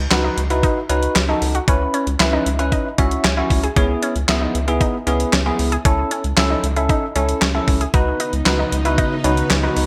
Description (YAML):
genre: synth-pop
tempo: 115 BPM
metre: 4/4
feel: straight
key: unclear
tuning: A4 = 439 Hz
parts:
  - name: analog pluck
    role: arpeggios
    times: 0.0-9.8 s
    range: C#4 to G#4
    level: -27 LUFS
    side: equal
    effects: chorus, digital delay
  - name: rubbery square bass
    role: bass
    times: 0.0-9.9 s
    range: C#2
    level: -24 LUFS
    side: equal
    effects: none
  - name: bell-like tine electric piano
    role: accompaniment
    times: 0.1-9.9 s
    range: B3 to G#5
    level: -24 LUFS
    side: equal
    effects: lush chorus
  - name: detuned 8-bit digital drum machine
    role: drums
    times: 0.1-9.9 s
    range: handclaps, hi-hat, kick drum, snare drum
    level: -22 LUFS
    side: equal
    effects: gated reverb
  - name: string machine, full ensemble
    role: sustained chords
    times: 7.9-9.9 s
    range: C#3 to D#4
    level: -27 LUFS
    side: equal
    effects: ensemble chorus
room: moderate plate reverb, RT60 1.4 s, digital ambience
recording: bright 1980s-style digital production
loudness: -18 LUFS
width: mono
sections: 0.0-9.9 A section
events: tine electric piano fill 2.7-3.8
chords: 0.0 B/C#; 1.7 C#m7; 3.8 E/C#; 5.9 A/C#; 7.9 B/C#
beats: 0.11 0.63 1.16 | 1.68 2.20 2.72 3.24 | 3.77 4.29 4.81 5.33 | 5.85 6.37 6.89 7.42 | 7.94 8.46 8.98 9.50